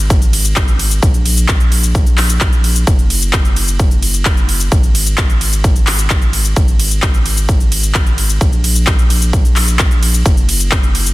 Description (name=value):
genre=EDM, festival progressive house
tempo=130 BPM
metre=4/4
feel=straight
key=unclear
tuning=A4 = 439 Hz
part: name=saturated sub bass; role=bass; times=0.0-11.1 s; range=Gb1 to Bb1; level=-15 LUFS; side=equal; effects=sidechain pumping
part: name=big-room dance drum kit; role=drums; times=0.1-11.1 s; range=cabasa, handclaps, hi-hat, ride cymbal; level=-17 LUFS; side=left 1 dB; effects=none
part: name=electronic kick drum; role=drums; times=0.1-10.8 s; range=none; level=-12 LUFS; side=equal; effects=none
room=little or no reverb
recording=dense, heavily limited modern master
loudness=-10 LUFS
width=side -19 dB against mid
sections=0.0-11.1 A section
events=none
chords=none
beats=0.10 0.56 | 1.03 1.49 1.95 2.41 | 2.87 3.33 3.79 4.26 | 4.72 5.18 5.64 6.10 | 6.56 7.03 7.49 7.95 | 8.41 8.87 9.33 9.79 | 10.26 10.72